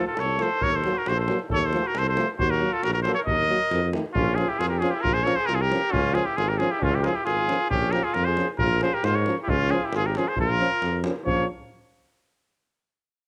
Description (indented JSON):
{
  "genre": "balkan folk, Balkan brass band",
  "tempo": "135 BPM",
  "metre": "2/4",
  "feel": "straight",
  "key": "Eb dorian sharp4, Bb dorian sharp4 from 4.2 s",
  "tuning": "A4 = 443 Hz",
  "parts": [
    { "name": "cornet with straight mute", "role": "melody", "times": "0.0-11.5 s", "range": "F4 to Eb5", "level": "-27 LUFS", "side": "equal", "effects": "none" },
    { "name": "warm trumpet", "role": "second line", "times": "0.0-11.5 s", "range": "Bb3 to Bb4", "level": "-33 LUFS", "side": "equal", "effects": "cassette tape" },
    { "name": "warm euphonium", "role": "accompaniment", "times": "0.0-11.5 s", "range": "A3 to Db4", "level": "-36 LUFS", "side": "equal", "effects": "cassette tape" },
    { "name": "warm euphonium", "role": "accompaniment", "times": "0.0-11.5 s", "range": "Eb3 to Gb3", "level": "-32 LUFS", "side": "equal", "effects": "cassette tape" },
    { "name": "mellow tuba", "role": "bass", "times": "0.2-11.5 s", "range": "Ab1 to Ab2", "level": "-30 LUFS", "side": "equal", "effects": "none" },
    { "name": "davul", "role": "percussion", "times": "0.2-11.5 s", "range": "none", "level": "-34 LUFS", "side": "equal", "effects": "none" }
  ],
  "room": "light reverb, studio ambience",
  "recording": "home recording on cassette",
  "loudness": "-24 LUFS",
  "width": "mono",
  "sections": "0.0-4.2 A section; 4.2-11.2 B section",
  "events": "none",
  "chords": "0.0 F; 0.6 Ebm; 1.5 F/Eb; 2.4 Ebm; 3.7 F7; 4.2 Bbm; 5.9 Db; 7.7 Bbm; 9.5 Db; 10.4 Bbm"
}